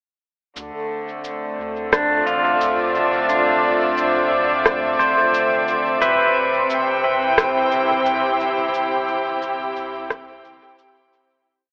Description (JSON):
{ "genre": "ambient dub", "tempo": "88 BPM", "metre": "4/4", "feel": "straight", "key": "D dorian", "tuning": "A4 = 443 Hz", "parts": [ { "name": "rich chamber string section", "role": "sustained chords", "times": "0.6-11.5 s", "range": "C3 to G5", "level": "-23 LUFS", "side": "equal", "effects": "none" }, { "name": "warm sub bass", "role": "bass", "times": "0.6-10.6 s", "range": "G1 to D2", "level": "-46 LUFS", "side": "equal", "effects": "tube saturation" }, { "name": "electronic cabasa and rim click", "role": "drums", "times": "0.6-11.3 s", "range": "none", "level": "-24 LUFS", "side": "equal", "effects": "dub echo" }, { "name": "drifting glass-harmonics texture", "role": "texture", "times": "1.1-11.5 s", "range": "C4 to C5", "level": "-28 LUFS", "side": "equal", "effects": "chorus, built-in reverb" }, { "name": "pedal steel guitar", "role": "arpeggios", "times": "1.9-9.1 s", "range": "D4 to E5", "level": "-23 LUFS", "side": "equal", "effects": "vintage 12-bit sampler grit, tape echo" }, { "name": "electronic kick drum", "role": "drums", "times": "1.9-10.2 s", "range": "none", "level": "-38 LUFS", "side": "equal", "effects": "none" } ], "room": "moderate huge ambient reverb, RT60 6.5 s", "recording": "telephone sound", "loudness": "-19 LUFS", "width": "mono", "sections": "0.6-11.5 groove", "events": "fade-out 7.8-11.5", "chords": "0.6 Dm7; 6.0 C" }